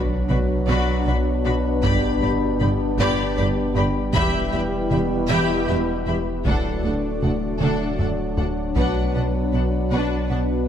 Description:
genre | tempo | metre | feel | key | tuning
cinematic, hybrid orchestral and electronic film score | 52 BPM (dotted quarters) | 6/8 | straight | B minor | A4 = 440 Hz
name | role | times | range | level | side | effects
airy breathy pad | sustained chords | 0.0-10.7 s | A3 to D5 | -29 LUFS | left 1 dB | chorus
mellow French horn section | sustained chords | 0.0-10.7 s | A3 to E4 | -28 LUFS | left 4 dB | none
warm trombone section | sustained chords | 0.0-10.7 s | B2 to G3 | -29 LUFS | right 4 dB | none
saturated sub bass | bass | 0.0-10.7 s | D1 to B1 | -27 LUFS | equal | none
impact | sound effects | 0.0-1.8 s | none | -35 LUFS | equal | none
clear studio violin section | melody | 0.3-10.4 s | F#5 to B5 | -32 LUFS | left 6 dB | none
rich studio violin section | second line | 0.3-10.4 s | A4 to E5 | -31 LUFS | left 2 dB | none
rich symphonic viola section | accompaniment | 0.3-10.4 s | D4 to G4 | -30 LUFS | equal | none
rich symphonic cello section | bass | 0.3-10.4 s | D2 to B2 | -28 LUFS | right 2 dB | none
rich symphonic double bass section | bass | 0.3-10.4 s | E1 to D2 | -28 LUFS | right 2 dB | none
solo taiko drums | drums | 0.3-9.5 s | none | -27 LUFS | equal | none
room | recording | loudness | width
wet scoring stage reverb, RT60 1.9 s | none | -19 LUFS | side -9 dB against mid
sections
0.0-10.7 A section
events
impact 0.0-1.8; drum fill 7.6-8.8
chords
0.0 Bm; 1.8 G; 4.1 Em; 6.4 D; 8.8 Bm

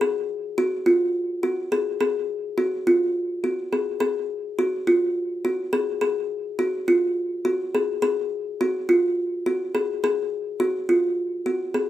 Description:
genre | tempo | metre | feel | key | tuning
progressive instrumental, progressive | 210 BPM (eighths) | 7/8 | straight | unclear | A4 = 441 Hz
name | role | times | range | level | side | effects
kalimba | solo | 0.0-11.9 s | F4 to Ab4 | -21 LUFS | equal | none
room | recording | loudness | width
little or no reverb | recorded outdoors, with no room sound | -21 LUFS | side -13 dB against mid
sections
0.0-11.9 A section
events
none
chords
none

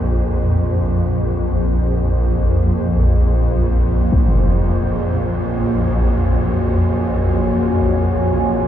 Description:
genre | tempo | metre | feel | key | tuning
dark ambient drone | free time | none | none | Bb minor | A4 = 439 Hz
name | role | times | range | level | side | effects
dark analog pad | sustained chords | 0.0-8.7 s | Bb3 to Ab5 | -23 LUFS | right 1 dB | chorus, phaser
swarming drone | drone | 0.0-8.7 s | Bb1 to F2 | -16 LUFS | equal | built-in reverb
impact | percussion | 4.1-4.3 s | none | -18 LUFS | equal | low-pass filter on sfx
room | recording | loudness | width
moderate huge ambient reverb, RT60 8.2 s | dark, warm production | -15 LUFS | side -10 dB against mid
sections
0.0-8.7 A section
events
none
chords
0.0 Bb5; 4.1 Gbadd9/Bb

